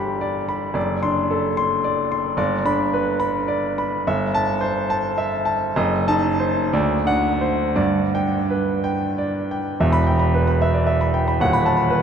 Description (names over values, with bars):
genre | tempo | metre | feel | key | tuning
classical, romantic character piece for solo piano | 54-80 BPM (dotted quarters) | 6/8 | rubato | G major | A4 = 439 Hz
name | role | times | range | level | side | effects
clear concert grand piano | solo | 0.0-12.0 s | D#1 to C6 | -18 LUFS | equal | none
room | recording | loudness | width
wet cathedral reverb, RT60 6.5 s | in a vast, echoing space | -18 LUFS | side -7 dB against mid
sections
0.0-9.8 A section; 9.8-12.0 B section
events
none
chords
0.0 G; 0.8 D7/F#; 2.4 G; 4.0 Am7/G; 5.8 F#dim7; 6.7 D7; 7.8 G; 9.8 Em; 11.4 B7/D#